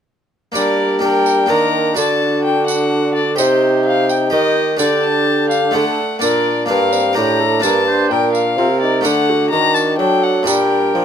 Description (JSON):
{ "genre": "classical, renaissance-style consort dance", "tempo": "127 BPM", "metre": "3/4", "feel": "straight", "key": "G minor", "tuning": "A4 = 440 Hz", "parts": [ { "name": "harpsichord", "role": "accompaniment", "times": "0.5-11.0 s", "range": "G2 to Eb5", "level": "-22 LUFS", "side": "left 1 dB", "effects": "none" }, { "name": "mellow bassoon", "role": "bass", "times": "0.5-11.0 s", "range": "G2 to G3", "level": "-18 LUFS", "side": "right 2 dB", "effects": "none" }, { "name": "rich violin", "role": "melody", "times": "0.6-11.0 s", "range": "C5 to Bb5", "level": "-18 LUFS", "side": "left 6 dB", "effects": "none" }, { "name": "warm viola", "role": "second line", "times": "0.6-11.0 s", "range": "F#4 to C5", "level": "-21 LUFS", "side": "right 8 dB", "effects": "none" }, { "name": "mellow bassoon", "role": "accompaniment", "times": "0.6-11.0 s", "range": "C4 to F4", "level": "-22 LUFS", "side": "left 3 dB", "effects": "none" }, { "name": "tambourine", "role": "percussion", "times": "0.6-10.7 s", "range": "none", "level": "-24 LUFS", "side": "right 10 dB", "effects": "none" } ], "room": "light reverb", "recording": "close, detailed microphones", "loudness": "-13 LUFS", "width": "side -8 dB against mid", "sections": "0.6-11.0 A section", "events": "none", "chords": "0.6 Gm; 2.0 D; 3.4 Cm; 4.8 Dsus4; 5.7 D; 6.2 Bb; 7.6 Gm; 9.0 D; 10.5 Gm" }